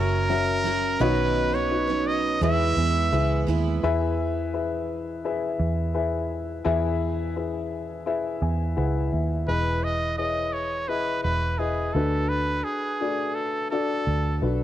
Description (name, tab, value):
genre	pop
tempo	85 BPM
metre	4/4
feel	straight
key	E major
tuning	A4 = 440 Hz
part	brilliant trumpet	melody	0.0-3.4, 9.5-14.4 s	G#4 to E5	-27 LUFS	right 2 dB	cassette tape
part	dark upright piano	accompaniment	0.0-14.6 s	B2 to G#5	-27 LUFS	left 5 dB	none
part	picked steel-string acoustic guitar	riff	0.0-3.8 s	B2 to B4	-29 LUFS	right 9 dB	none
part	vintage muted fingered electric bass	bass	0.0-14.6 s	E1 to E2	-27 LUFS	right 2 dB	none
room	light reverb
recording	home recording on cassette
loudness	-23 LUFS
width	side -12 dB against mid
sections	0.0-3.8 A section; 3.8-9.5 B section; 9.5-14.6 C section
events	upright piano fill 8.1-9.5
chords	0.0 F#; 1.0 Badd9; 2.4 E; 9.5 Emaj7; 12.0 D6